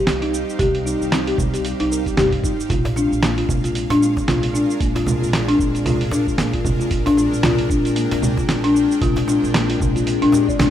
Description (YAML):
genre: organic downtempo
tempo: 114 BPM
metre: 4/4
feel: swing 58% on 16ths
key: unclear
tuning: A4 = 437 Hz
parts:
  - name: mellow tine electric piano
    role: accompaniment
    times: 0.0-10.7 s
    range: G3 to Bb4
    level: -28 LUFS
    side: left 2 dB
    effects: medium stereo tremolo, sidechain pumping, tape echo
  - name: bowed-like drone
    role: sustained chords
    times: 0.0-10.7 s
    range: D4 to G5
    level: -28 LUFS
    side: left 1 dB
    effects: built-in reverb, sidechain pumping
  - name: folk marimba with soft mallets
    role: arpeggios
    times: 0.0-10.7 s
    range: Bb3 to D5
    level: -19 LUFS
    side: left 2 dB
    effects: tape echo
  - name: upright bass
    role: bass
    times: 0.1-10.7 s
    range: G1 to C2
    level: -26 LUFS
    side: right 1 dB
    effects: sidechain pumping
  - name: dusty soul sampler-style drum kit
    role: drums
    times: 0.1-10.7 s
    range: congas, hi-hat, shaker, snare drum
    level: -22 LUFS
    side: right 2 dB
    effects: none
  - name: electronic kick drum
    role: drums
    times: 0.6-10.6 s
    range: none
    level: -24 LUFS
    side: right 1 dB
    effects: none
  - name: cajon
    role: percussion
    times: 2.9-10.7 s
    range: none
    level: -30 LUFS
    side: left 1 dB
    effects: none
room: light reverb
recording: rough home demo mix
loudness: -16 LUFS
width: side -10 dB against mid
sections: 0.0-10.7 A section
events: none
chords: 0.0 Cm; 2.7 Bb7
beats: 0.07 | 0.59 1.12 1.65 2.17 | 2.70 3.23 3.75 4.28 | 4.80 5.33 5.86 6.38 | 6.91 7.44 7.96 8.49 | 9.02 9.54 10.07 10.59